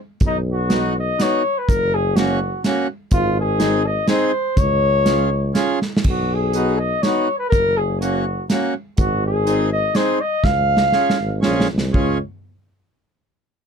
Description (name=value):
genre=alpine folk, alpine dance band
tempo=123 BPM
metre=3/4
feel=swing 54% on 8ths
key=Db major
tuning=A4 = 440 Hz
part: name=warm tuba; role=bass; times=0.2-12.2 s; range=Gb1 to Db2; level=-22 LUFS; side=equal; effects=none
part: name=modern studio drum kit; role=drums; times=0.2-12.1 s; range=crash cymbal, hi-hat, kick drum, snare drum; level=-21 LUFS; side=right 1 dB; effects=none
part: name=warm flugelhorn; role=melody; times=0.3-12.2 s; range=Eb4 to F5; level=-20 LUFS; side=left 1 dB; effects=none
part: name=accordion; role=accompaniment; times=0.7-12.2 s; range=Bb3 to Ab4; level=-20 LUFS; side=equal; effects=none
room=little or no reverb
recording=dark, warm production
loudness=-16 LUFS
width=side -6 dB against mid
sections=0.0-6.1 A section; 6.1-11.9 B section; 11.9-13.4 C section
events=drum fill 5.8, 10.4-11.9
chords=0.2 Cb; 1.7 Gb; 3.1 Ab; 4.6 Db; 6.1 Cb; 7.5 Gb; 9.0 Ab; 10.4 Db